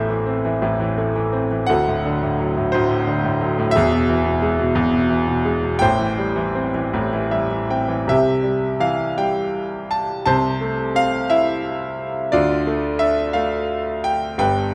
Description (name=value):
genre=classical, lyrical solo piano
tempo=51-60 BPM (dotted quarters)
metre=6/8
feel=rubato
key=A minor, C major from 8.1 s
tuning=A4 = 440 Hz
part: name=bright concert grand piano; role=solo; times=0.0-14.7 s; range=D1 to A5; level=-20 LUFS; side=equal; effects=none
room=moderate recital hall reverb, RT60 1.5 s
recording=none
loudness=-20 LUFS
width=mono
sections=0.0-8.1 A section; 8.1-14.7 B section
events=grand piano fill 7.0-8.1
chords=0.0 Am; 1.7 D; 3.7 E; 5.8 Am7; 8.1 C; 10.3 Am/C; 12.3 Dm